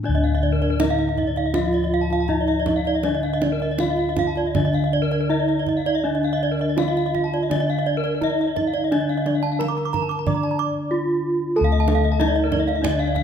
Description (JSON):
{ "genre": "Balinese gamelan", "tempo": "80-94 BPM", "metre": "4/4", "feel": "straight", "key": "D pelog", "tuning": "A4 = 438 Hz", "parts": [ { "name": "gamelan-type bronze metallophone", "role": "melody", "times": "0.0-13.2 s", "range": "D4 to D5", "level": "-24 LUFS", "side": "equal", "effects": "none" }, { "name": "gamelan-type bronze metallophone", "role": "accompaniment", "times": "0.0-13.2 s", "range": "D3 to D4", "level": "-28 LUFS", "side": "right 1 dB", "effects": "none" }, { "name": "gamelan-type bossed gongs", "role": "bass", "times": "0.0-13.2 s", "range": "D2 to A4", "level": "-26 LUFS", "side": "left 1 dB", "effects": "none" }, { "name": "gamelan-type bronze metallophone", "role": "arpeggios", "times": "0.1-13.2 s", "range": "Bb4 to D6", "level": "-27 LUFS", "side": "left 6 dB", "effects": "none" }, { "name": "gamelan-type bronze metallophone", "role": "arpeggios", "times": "0.1-13.2 s", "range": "D5 to D6", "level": "-27 LUFS", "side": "right 5 dB", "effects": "none" }, { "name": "kendang", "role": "percussion", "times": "0.2-13.2 s", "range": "none", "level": "-29 LUFS", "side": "right 5 dB", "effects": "none" } ], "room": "wet recital hall reverb, RT60 1.6 s", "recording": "minimal, uncompressed stereo recording", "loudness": "-19 LUFS", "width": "side -8 dB against mid", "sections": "0.0-11.6 A section; 11.6-13.2 B section", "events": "none", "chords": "none" }